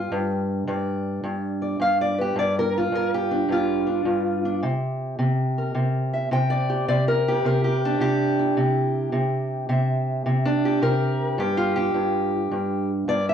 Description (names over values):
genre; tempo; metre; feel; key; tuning
acoustic country blues, solo or duo; 106 BPM; 4/4; swing 68% on 8ths; unclear; A4 = 440 Hz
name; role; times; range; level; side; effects
fingerpicked steel-string acoustic guitar; solo; 0.0-13.3 s; G2 to G5; -21 LUFS; equal; none
room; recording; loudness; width
wet studio reverb, RT60 0.8 s; worn, warbling old tape, cassette tape, warbly pitch drift; -21 LUFS; side -8 dB against mid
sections
0.0-13.3 A section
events
none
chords
0.0 G7(no3); 4.6 C7; 11.4 G7(no3)